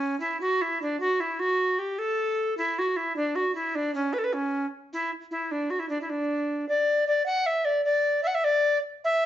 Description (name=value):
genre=medieval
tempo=102 BPM (dotted quarters)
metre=6/8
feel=straight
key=D major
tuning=A4 = 441 Hz
part: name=bright reedy tenor recorder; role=solo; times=0.0-9.3 s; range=C#4 to F#5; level=-24 LUFS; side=equal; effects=none
room=wet large studio reverb, RT60 0.9 s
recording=band playing live in one room, nothing above 7.6 kHz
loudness=-24 LUFS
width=side -11 dB against mid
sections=0.0-7.3 A section; 7.3-9.3 B section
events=none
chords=none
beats=| 0.23 0.81 | 1.40 1.99 | 2.58 3.16 | 3.75 4.33 | 4.92 5.51 | 6.09 6.68 | 7.26 7.85 | 8.44 9.02